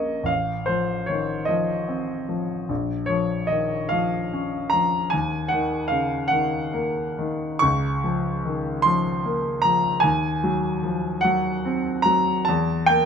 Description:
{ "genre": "classical, romantic nocturne for solo piano", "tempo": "49 BPM (dotted quarters)", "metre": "6/8", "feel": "rubato", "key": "Bb minor", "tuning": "A4 = 441 Hz", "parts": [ { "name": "clear grand piano", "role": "solo", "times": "0.0-13.1 s", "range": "A1 to Db6", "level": "-21 LUFS", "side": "equal", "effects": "none" } ], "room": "light reverb", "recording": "minimal, uncompressed stereo recording", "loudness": "-21 LUFS", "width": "side -6 dB against mid", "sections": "0.0-13.1 A section", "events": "none", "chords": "0.3 F7/A; 2.7 Bbm; 5.1 Ebm; 7.6 Bbm/Db; 10.0 Cdim/Eb; 12.5 C7/E (rootless)", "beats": "| 0.28 1.49 | 2.69 3.92 | 5.12 6.31 | 7.63 8.85 | 10.05 11.25 | 12.48" }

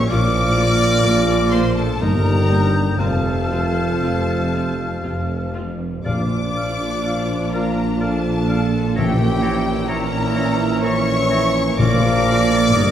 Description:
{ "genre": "classical, slow romantic movement for symphony orchestra", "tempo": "57-66 BPM", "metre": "3/4", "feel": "rubato", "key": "Bb major", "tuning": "A4 = 436 Hz", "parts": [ { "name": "rich studio violin section", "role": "melody", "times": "0.0-12.9 s", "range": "G5 to D6", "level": "-28 LUFS", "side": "left 2 dB", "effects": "none" }, { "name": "clear clarinet", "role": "second line", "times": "0.0-12.9 s", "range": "Bb4 to D5", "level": "-32 LUFS", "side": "left 1 dB", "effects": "none" }, { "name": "rich studio violin section", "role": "second line", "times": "0.0-12.9 s", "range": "G5 to D6", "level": "-30 LUFS", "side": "left 4 dB", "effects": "none" }, { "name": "silver concert flute", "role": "second line", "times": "0.0-12.9 s", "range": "F6 to Bb6", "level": "-32 LUFS", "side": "left 1 dB", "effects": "none" }, { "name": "warm oboe", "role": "second line", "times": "0.0-12.9 s", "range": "D5 to F5", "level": "-31 LUFS", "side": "left 1 dB", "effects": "none" }, { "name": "dark French horn section", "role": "sustained chords", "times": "0.0-12.9 s", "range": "Bb3 to Bb4", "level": "-26 LUFS", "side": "left 2 dB", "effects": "none" }, { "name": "warm trombone section", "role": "sustained chords", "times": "0.0-12.9 s", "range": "Bb2 to G3", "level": "-28 LUFS", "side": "right 1 dB", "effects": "none" }, { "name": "clear trumpet section", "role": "stabs", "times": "0.0-12.9 s", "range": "G4 to D5", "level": "-25 LUFS", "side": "equal", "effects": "none" }, { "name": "bright studio viola section", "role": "accompaniment", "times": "0.1-12.9 s", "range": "Bb3 to F4", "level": "-29 LUFS", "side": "right 1 dB", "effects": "none" }, { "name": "clear studio cello section", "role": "bass", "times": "0.1-12.9 s", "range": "F2 to Bb2", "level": "-26 LUFS", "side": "right 3 dB", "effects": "none" }, { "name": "mellow tuba", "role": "bass", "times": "0.1-12.9 s", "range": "F1 to Bb1", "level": "-24 LUFS", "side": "right 2 dB", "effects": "none" }, { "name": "rich studio double bass section", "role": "bass", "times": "0.1-12.9 s", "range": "F1 to Bb1", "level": "-24 LUFS", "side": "equal", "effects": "none" }, { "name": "timpani", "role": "percussion", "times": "6.1-12.7 s", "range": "Bb2", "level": "-22 LUFS", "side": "left 2 dB", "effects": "none" } ], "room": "wet scoring stage reverb, RT60 1.6 s", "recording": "heard from further back in the room", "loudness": "-16 LUFS", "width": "side -10 dB against mid", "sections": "0.0-12.9 A section", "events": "none", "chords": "0.1 Bb; 2.0 Eb/G; 3.0 F; 6.1 Bb; 9.0 Bbdim7; 11.8 Bb", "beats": "| 0.09 1.04 2.00 | 3.00 4.02 5.03 | 6.06 7.07 8.03 | 8.98 9.89 10.84 | 11.79 12.75" }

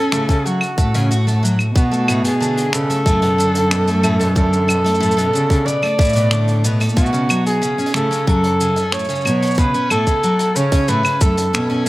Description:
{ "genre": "folktronica", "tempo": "92 BPM", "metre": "4/4", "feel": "straight", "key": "B dorian", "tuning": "A4 = 439 Hz", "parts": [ { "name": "warm flugelhorn", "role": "melody", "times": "0.0-11.9 s", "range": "F#4 to D5", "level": "-19 LUFS", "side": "equal", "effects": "none" }, { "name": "picked twelve-string acoustic guitar", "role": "arpeggios", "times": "0.0-11.9 s", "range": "A2 to F#4", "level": "-22 LUFS", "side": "equal", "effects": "none" }, { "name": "muted cello", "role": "bass", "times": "0.1-11.9 s", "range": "F#2 to C#3", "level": "-18 LUFS", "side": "equal", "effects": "tube saturation" }, { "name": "vintage brush drum kit", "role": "drums", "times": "0.1-11.9 s", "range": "claves, finger snaps, hi-hat, shaker", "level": "-24 LUFS", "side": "equal", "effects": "none" }, { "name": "electronic kick drum", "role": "drums", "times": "0.3-11.3 s", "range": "none", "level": "-16 LUFS", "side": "equal", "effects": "none" } ], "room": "light reverb, small room reverb", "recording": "none", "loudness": "-14 LUFS", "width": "side -18 dB against mid", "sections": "0.0-11.9 A section", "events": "none", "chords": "0.0 F#m; 1.8 Bm7; 7.0 F#m", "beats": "0.45 1.10 | 1.75 2.41 3.06 3.71 | 4.36 5.01 5.67 6.32 | 6.97 7.62 8.28 8.93 | 9.58 10.23 10.88 11.54" }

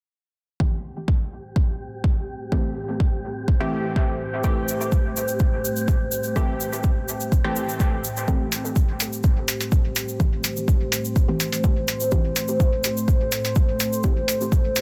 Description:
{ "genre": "dub techno", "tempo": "125 BPM", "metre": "4/4", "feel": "straight", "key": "A minor", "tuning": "A4 = 438 Hz", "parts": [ { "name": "dark analog pad", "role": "sustained chords", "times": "1.8-14.8 s", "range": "A3 to C5", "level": "-30 LUFS", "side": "equal", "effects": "chorus, phaser, sidechain pumping" }, { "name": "filtered dub chord stab", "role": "stabs", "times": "0.6-14.2 s", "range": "E3 to G4", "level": "-32 LUFS", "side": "equal", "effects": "chorus, phaser, sidechain pumping, dub echo" }, { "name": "electronic kick drum", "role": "drums", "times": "0.6-14.6 s", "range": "none", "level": "-23 LUFS", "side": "equal", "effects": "overdrive" }, { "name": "wind-like tuned noise texture", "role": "texture", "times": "1.0-8.3 s", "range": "G4", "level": "-39 LUFS", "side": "equal", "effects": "built-in reverb, sidechain pumping" }, { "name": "cabasa", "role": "percussion", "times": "4.4-14.8 s", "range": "none", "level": "-32 LUFS", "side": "equal", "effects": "none" }, { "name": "electronic hi-hat", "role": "drums", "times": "8.5-14.8 s", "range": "none", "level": "-27 LUFS", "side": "equal", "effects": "none" } ], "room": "light reverb", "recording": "dense, heavily limited modern master", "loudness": "-23 LUFS", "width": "mono", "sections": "0.6-8.3 A section; 8.3-14.8 B section", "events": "filter sweep on synth stab 0.6-8.3, 8.3-14.8", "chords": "0.6 Am7", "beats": "| 0.60 1.08 1.56 2.04 | 2.52 3.00 3.48 3.96 | 4.44 4.92 5.40 5.88 | 6.36 6.84 7.32 7.80 | 8.28 8.76 9.24 9.72 | 10.20 10.68 11.16 11.64 | 12.12 12.60 13.08 13.56 | 14.04 14.52" }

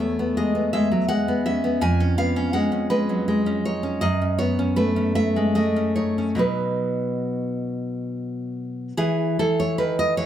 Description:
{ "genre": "romantic piece for solo classical guitar", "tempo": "46-56 BPM (dotted quarters)", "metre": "6/8", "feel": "rubato", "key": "E major", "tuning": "A4 = 440 Hz", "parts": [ { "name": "nylon-string guitar", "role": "solo", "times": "0.0-10.3 s", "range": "E2 to G#5", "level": "-20 LUFS", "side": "equal", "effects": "none" } ], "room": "light reverb", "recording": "none", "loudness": "-20 LUFS", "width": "side -10 dB against mid", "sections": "0.0-9.0 A section; 9.0-10.3 B section", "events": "none", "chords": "0.0 E; 1.8 C#7/E#; 4.0 F#m; 6.4 B; 9.0 E5", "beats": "0.72 | 1.81 2.89 | 4.01 5.16 | 6.39 7.69 | 8.98 10.19" }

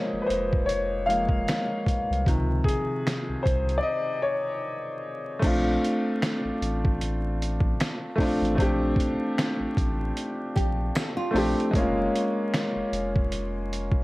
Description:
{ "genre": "lo-fi hip hop", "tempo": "76 BPM", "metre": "4/4", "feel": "swing 57% on 16ths", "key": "Bb major", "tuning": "A4 = 442 Hz", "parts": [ { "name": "clear upright piano", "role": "accompaniment", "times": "0.0-14.0 s", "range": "C3 to F5", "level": "-26 LUFS", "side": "left 1 dB", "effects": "cassette tape" }, { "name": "saturated sub bass", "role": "bass", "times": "0.1-14.0 s", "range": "F1 to Db2", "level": "-30 LUFS", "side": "equal", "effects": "none" }, { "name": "trip hop sampler-style drum kit", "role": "drums", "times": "0.3-14.0 s", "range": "crash cymbal, finger snaps, hi-hat, kick drum, snare drum", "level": "-27 LUFS", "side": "equal", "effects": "none" }, { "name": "nylon-string guitar", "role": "second line", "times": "10.6-11.7 s", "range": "F4 to A4", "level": "-33 LUFS", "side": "right 2 dB", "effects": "analog delay" } ], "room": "moderate spring reverb, RT60 2.4 s", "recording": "vinyl crackle", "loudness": "-23 LUFS", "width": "side -20 dB against mid", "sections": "0.0-5.4 A section; 5.4-14.0 B section", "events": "upright piano solo 0.0-5.4; break 3.8-5.4", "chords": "0.0 Gbmaj9 (rootless); 2.3 Dbmaj9; 5.4 Bbmaj9; 11.7 Gbmaj9", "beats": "0.69 1.48 | 2.27 3.06 3.84 4.63 | 5.42 6.21 7.00 7.79 | 8.58 9.37 10.16 10.95 | 11.74 12.53 13.32" }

